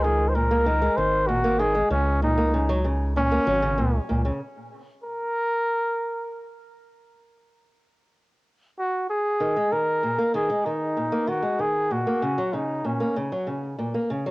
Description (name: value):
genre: folktronica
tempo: 96 BPM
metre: 4/4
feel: straight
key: unclear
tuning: A4 = 439 Hz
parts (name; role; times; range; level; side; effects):
- breathy flugelhorn; melody; 0.0-13.2 s; Db4 to C5; -24 LUFS; equal; analog delay
- fingerpicked old ladder-braced acoustic guitar; arpeggios; 0.0-4.4, 9.4-14.3 s; Bb2 to Bb3; -26 LUFS; equal; cassette tape
- round analog bass; bass; 0.0-4.3 s; Ab1 to Db2; -25 LUFS; equal; none
room: moderate studio reverb, RT60 0.5 s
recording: home recording on cassette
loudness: -22 LUFS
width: side -21 dB against mid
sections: 0.0-4.4 A section; 4.4-14.3 B section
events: break 13.2-14.3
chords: 0.0 Absus2/Db; 1.9 Gb/Db (rootless); 4.4 N.C.; 9.4 Absus2; 11.9 Gb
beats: 0.04 0.66 1.29 | 1.91 2.54 3.16 3.79 | 4.41 5.04 5.66 6.29 | 6.91 7.54 8.16 8.79 | 9.41 10.04 10.66 11.29 | 11.91 12.54 13.16 13.79